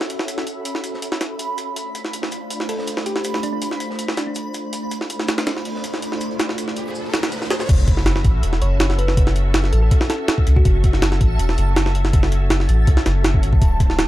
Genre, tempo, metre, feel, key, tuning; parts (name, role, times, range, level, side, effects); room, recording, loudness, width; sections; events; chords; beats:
drum and bass, jungle; 162 BPM; 4/4; straight; A4 = 440 Hz
soft string machine; sustained chords; 0.0-14.1 s; A3 to E5; -28 LUFS; equal; ensemble chorus, vintage 12-bit sampler grit
crunchy breakbeat drum kit; drums; 0.0-7.7 s; hi-hat, shaker, snare drum; -36 LUFS; right 1 dB; high-pass filter on hats, high-pass filter on snare, high-pass filter on perc, high-pass filter on room
jungle sampler-style drum kit; drums; 0.0-14.1 s; crash cymbal, hi-hat, kick drum, snare drum; -19 LUFS; equal; high-pass filter on hats, high-pass filter on snare, high-pass filter on kick, high-pass filter on cymbals
backwards swelling texture; texture; 0.4-14.1 s; A5 to B5; -33 LUFS; right 3 dB; built-in reverb
thumb-piano-like synth pluck; melody; 2.7-4.3, 8.6-11.1 s; D4 to C#5; -29 LUFS; left 1 dB; chorus, dub echo
riser and sub drop; sound effects; 6.1-9.2 s; -27 LUFS; equal
soft dub sub bass; bass; 7.7-14.1 s; D1 to C#2; -17 LUFS; equal
little or no reverb; dark, warm production; -17 LUFS; side -15 dB against mid
0.0-7.7 A section; 7.7-14.1 B section
riser 6.1-7.7; drop 7.7-14.1; impact 7.7-9.2
0.0 F#m7; 1.8 Dm7; 7.7 F#m7
| 0.28 0.65 1.02 1.39 | 1.76 2.13 2.50 2.88 | 3.25 3.62 3.99 4.36 | 4.73 5.10 5.47 5.84 | 6.21 6.58 6.95 7.32 | 7.69 8.06 8.43 8.80 | 9.17 9.54 9.91 10.28 | 10.65 11.02 11.39 11.77 | 12.13 12.51 12.88 13.25 | 13.62 13.99